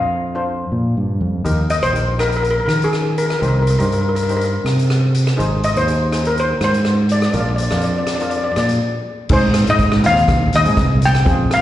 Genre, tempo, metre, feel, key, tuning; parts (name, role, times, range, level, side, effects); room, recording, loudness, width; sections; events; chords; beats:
calypso; 122 BPM; 4/4; straight; A4 = 442 Hz
steel pan; melody; 0.0-11.6 s; Ab4 to G5; -19 LUFS; left 2 dB; slapback echo, digital delay
steel pan; accompaniment; 0.0-11.6 s; C4 to C5; -26 LUFS; left 1 dB; slapback echo
overdriven fingered electric bass; bass; 0.0-11.6 s; Ab1 to Eb3; -17 LUFS; equal
street-band drum kit; drums; 1.5-11.6 s; crash cymbal, hi-hat, kick drum, rim click; -22 LUFS; equal
light reverb; live gig heard through the venue's PA, recital hall reverb, nothing above 10.5 kHz; -14 LUFS; side -13 dB against mid
0.0-9.3 A section; 9.3-11.6 B section
break 8.8-9.3
0.0 Bb; 1.5 Eb; 3.4 Cm; 5.4 Ab; 7.3 Bb; 9.3 Ab
0.48 0.97 | 1.46 1.95 2.44 2.93 | 3.42 3.91 4.40 4.89 | 5.38 5.87 6.36 6.85 | 7.34 7.83 8.32 8.81 | 9.30 9.79 10.28 10.77 | 11.26